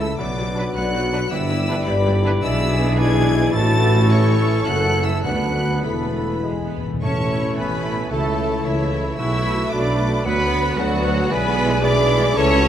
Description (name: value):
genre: classical, dramatic, fast romantic movement for symphony orchestra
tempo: 100-115 BPM (dotted quarters)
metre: 6/8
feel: rubato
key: A major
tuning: A4 = 439 Hz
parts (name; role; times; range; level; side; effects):
- warm symphonic violin section; melody; 0.0-12.7 s; E5 to A6; -29 LUFS; left 2 dB; none
- dark clarinet; second line; 0.0-12.7 s; D4 to A4; -31 LUFS; left 3 dB; none
- hollow concert flute; second line; 0.0-12.7 s; B4 to C#6; -28 LUFS; left 1 dB; none
- mellow cor anglais; second line; 0.0-12.7 s; A4 to D5; -32 LUFS; equal; none
- rich studio violin section; second line; 0.0-12.7 s; E4 to E5; -34 LUFS; left 2 dB; none
- rich symphonic viola section; accompaniment; 0.0-12.7 s; E3 to F#4; -31 LUFS; right 1 dB; none
- warm bassoon; accompaniment; 0.0-12.7 s; E3 to B3; -30 LUFS; right 1 dB; none
- bright trombone section; sustained chords; 0.0-12.2 s; D3 to D4; -31 LUFS; right 3 dB; none
- mellow French horn section; sustained chords; 0.0-12.7 s; E4 to B4; -27 LUFS; left 6 dB; none
- concert harp; arpeggios; 0.0-12.7 s; F#2 to D5; -30 LUFS; left 8 dB; none
- mellow trumpet section; stabs; 0.0-12.7 s; E4 to E5; -26 LUFS; right 3 dB; none
- clear symphonic double bass section; bass; 0.0-12.7 s; E1 to D2; -24 LUFS; right 2 dB; none
- mellow tuba; bass; 0.0-12.7 s; E1 to D2; -26 LUFS; right 2 dB; none
- rich symphonic cello section; bass; 0.0-12.7 s; D2 to E4; -27 LUFS; right 1 dB; none
- timpani; percussion; 6.4-7.5 s; E2 to A2; -28 LUFS; equal; none
room: moderate scoring stage reverb, RT60 1.8 s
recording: none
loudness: -17 LUFS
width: side -10 dB against mid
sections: 0.0-7.0 A section; 7.0-12.7 B section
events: timpani fill 6.4-7.0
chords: 0.2 Bm; 1.3 Em7/G; 2.4 E7/B; 3.5 A; 4.7 F#m7; 5.2 Bm/D; 5.8 Esus4; 6.4 E; 7.0 A; 8.1 A/C#; 9.2 Bm7; 10.2 Bm/D; 11.3 E7/B